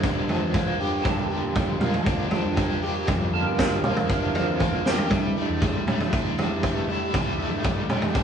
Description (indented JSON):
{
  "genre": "psychedelic rock",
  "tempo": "118 BPM",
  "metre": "4/4",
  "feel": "straight",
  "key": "G dorian",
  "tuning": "A4 = 442 Hz",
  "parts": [
    { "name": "percussive tonewheel organ", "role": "sustained chords", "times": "0.0-8.2 s", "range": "A3 to F5", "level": "-30 LUFS", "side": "right 4 dB", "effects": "slow rotary speaker, chorus vibrato" },
    { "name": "crunchy overdriven guitar", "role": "riff", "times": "0.0-8.2 s", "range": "G2 to G4", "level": "-27 LUFS", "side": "left 1 dB", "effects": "tremolo" },
    { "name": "fuzz picked electric bass", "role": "bass", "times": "0.0-8.2 s", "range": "A1 to G3", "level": "-31 LUFS", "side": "equal", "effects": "overdrive" },
    { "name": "vintage drum kit", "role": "drums", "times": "0.0-8.2 s", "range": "kick drum, snare drum, toms", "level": "-25 LUFS", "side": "right 1 dB", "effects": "none" }
  ],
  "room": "moderate stone room reverb, RT60 1.0 s",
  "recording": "band playing live in one room, studio reverb",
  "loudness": "-22 LUFS",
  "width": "side -7 dB against mid",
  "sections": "0.0-8.2 A section",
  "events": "tonewheel organ solo 0.0-8.2; drum fill 4.9",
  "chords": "0.0 Gm7; 5.1 Dsus2",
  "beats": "0.04 0.55 | 1.06 1.56 2.07 2.58 | 3.09 3.59 4.10 4.61 | 5.11 5.62 6.13 6.63 | 7.14 7.65 8.15"
}